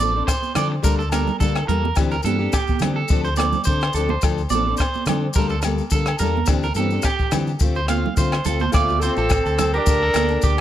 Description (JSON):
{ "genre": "highlife guitar band", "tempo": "106 BPM", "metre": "4/4", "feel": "swing 55% on 16ths", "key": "D minor", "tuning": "A4 = 440 Hz", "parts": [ { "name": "fingerpicked plugged-in steel-string acoustic guitar", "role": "accompaniment", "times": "0.0-10.5 s", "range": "E3 to A4", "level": "-26 LUFS", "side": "left 6 dB", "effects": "none" }, { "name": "electric guitar at the edge of break-up", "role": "arpeggios", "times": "0.0-10.6 s", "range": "G4 to F5", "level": "-25 LUFS", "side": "right 5 dB", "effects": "spring reverb, analog delay" }, { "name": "deep dub fingered electric bass", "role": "bass", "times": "0.0-10.6 s", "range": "A1 to D3", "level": "-23 LUFS", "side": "equal", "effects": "none" }, { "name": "congas", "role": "percussion", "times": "0.0-10.3 s", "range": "none", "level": "-28 LUFS", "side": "right 11 dB", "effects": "none" }, { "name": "compact cocktail drum kit", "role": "drums", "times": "0.3-10.6 s", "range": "hi-hat, kick drum, rim click", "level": "-22 LUFS", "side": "equal", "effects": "none" }, { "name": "agogo bells", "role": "percussion", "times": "0.3-10.6 s", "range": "none", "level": "-32 LUFS", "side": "left 6 dB", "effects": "none" }, { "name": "maracas", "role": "percussion", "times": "0.3-10.6 s", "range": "none", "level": "-33 LUFS", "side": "left 10 dB", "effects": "none" }, { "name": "clear alto saxophone", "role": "melody", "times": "8.7-10.6 s", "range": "F4 to Bb4", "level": "-22 LUFS", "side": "right 1 dB", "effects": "none" }, { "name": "clear trumpet", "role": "second line", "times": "8.8-10.6 s", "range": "A3 to D4", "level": "-27 LUFS", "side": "left 4 dB", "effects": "none" } ], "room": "small room reverb", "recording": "none", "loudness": "-18 LUFS", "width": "side -12 dB against mid", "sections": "0.0-8.7 A section; 8.7-10.6 B section", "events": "none", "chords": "0.0 Dm7; 0.8 Gmadd9/D; 2.0 Cadd9/D; 3.1 F/D; 4.2 Dm7; 5.4 Gmadd9/D; 6.5 Cadd9/D; 7.6 F/D; 8.7 Dm7; 9.9 Gmadd9/D" }